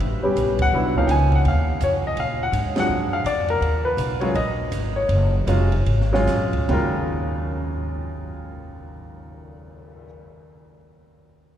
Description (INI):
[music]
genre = jazz piano trio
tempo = 141-166 BPM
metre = 4/4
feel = swing 63% on 8ths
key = Eb minor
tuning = A4 = 440 Hz
[part]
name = warm baby grand piano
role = melody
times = 0.0-10.1 s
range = Eb2 to Ab5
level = -22 LUFS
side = left 1 dB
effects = none
[part]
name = upright bass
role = bass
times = 0.0-10.0 s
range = F1 to Bb2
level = -23 LUFS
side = equal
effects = none
[part]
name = open jazz drum kit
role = drums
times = 0.0-10.0 s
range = crash cymbal, cymbal swell, hi-hat, kick drum, ride cymbal, snare drum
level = -31 LUFS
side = right 2 dB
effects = none
[sound]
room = wet cathedral reverb, RT60 5.3 s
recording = recorded in a church or concert hall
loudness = -19 LUFS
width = side -10 dB against mid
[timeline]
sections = 0.0-6.7 A section; 6.7-10.1 B section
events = band accent 0.5, 2.7; slowing down 3.6-6.7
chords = 0.0 A9; 0.7 Bmaj9#11; 2.2 Bb7b13; 3.6 Ebm11